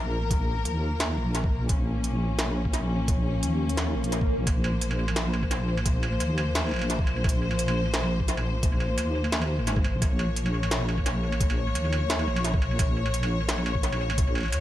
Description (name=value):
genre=half-time drum and bass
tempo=173 BPM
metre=4/4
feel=half-time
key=Bb minor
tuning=A4 = 436 Hz
part: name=clear symphonic string section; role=sustained chords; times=0.0-14.6 s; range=F3 to Db5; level=-30 LUFS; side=left 2 dB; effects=vintage 12-bit sampler grit, sidechain pumping
part: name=deep soft wobble bass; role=bass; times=0.0-14.6 s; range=Ab1 to Eb2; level=-27 LUFS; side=equal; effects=chorus
part: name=electronic kick drum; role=drums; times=0.3-14.3 s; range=none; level=-26 LUFS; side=equal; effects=studio reverb
part: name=industrial drum kit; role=drums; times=0.3-14.6 s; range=hi-hat, snare drum, struck metal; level=-31 LUFS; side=right 1 dB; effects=studio reverb, tape echo
part: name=swell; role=sound effects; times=3.9-4.5 s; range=none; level=-33 LUFS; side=right 1 dB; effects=none
room=light reverb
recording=echo-heavy mix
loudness=-24 LUFS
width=side -13 dB against mid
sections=0.0-14.6 A section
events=swell 3.9-4.5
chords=0.0 Bb5